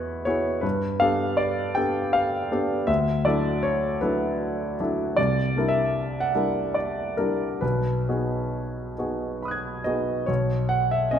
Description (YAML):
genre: classical, impressionist solo piano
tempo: 65-82 BPM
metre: 3/4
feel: rubato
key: unclear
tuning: A4 = 440 Hz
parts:
  - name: clear concert grand piano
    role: solo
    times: 0.0-11.2 s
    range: B1 to G#6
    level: -22 LUFS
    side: equal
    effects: none
room: wet recital hall reverb, RT60 1.4 s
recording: minimal, uncompressed stereo recording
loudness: -22 LUFS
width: side -9 dB against mid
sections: 0.0-10.3 A section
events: none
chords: 0.0 Eadd9; 0.6 G9; 2.9 D69; 5.2 C9; 7.6 B6; 10.3 Bsus2